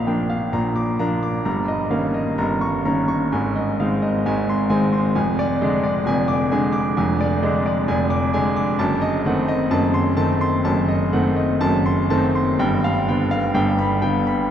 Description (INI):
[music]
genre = classical, romantic nocturne for solo piano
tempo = 65 BPM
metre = 4/4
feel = uneven beats, rubato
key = unclear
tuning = A4 = 438 Hz
[part]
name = clear concert grand piano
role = solo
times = 0.0-14.5 s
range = F1 to D6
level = -18 LUFS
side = equal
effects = none
[sound]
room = wet cathedral reverb, RT60 4.7 s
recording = none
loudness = -18 LUFS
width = side -9 dB against mid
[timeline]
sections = 0.0-14.5 A section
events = none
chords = 0.0 Bb; 1.5 Eb7/G; 3.3 Ab; 5.2 Ddim/F; 8.8 F#dim7; 12.6 G7